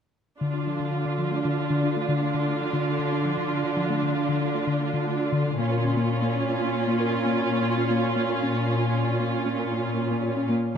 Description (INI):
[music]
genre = cinematic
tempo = 116 BPM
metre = 5/4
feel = straight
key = unclear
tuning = A4 = 440 Hz
[part]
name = rich symphonic viola section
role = accompaniment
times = 0.4-10.5 s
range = Db4 to F4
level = -26 LUFS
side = right 4 dB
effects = none
[part]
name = harp-like synth pluck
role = arpeggios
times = 0.4-10.8 s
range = D3 to Bb4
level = -28 LUFS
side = left 3 dB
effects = chorus, ping-pong delay
[part]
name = rich symphonic cello section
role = bass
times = 0.4-10.8 s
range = Bb2 to D3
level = -28 LUFS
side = left 2 dB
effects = none
[sound]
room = moderate scoring stage reverb, RT60 1.6 s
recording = none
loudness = -23 LUFS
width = side -7 dB against mid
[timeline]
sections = 0.4-10.7 A section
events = none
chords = 0.4 Dm; 5.6 Bbm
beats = | 0.40 0.92 1.44 1.96 2.47 | 2.99 3.51 4.03 4.54 5.06 | 5.58 6.09 6.61 7.13 7.65 | 8.16 8.68 9.20 9.71 10.23 | 10.75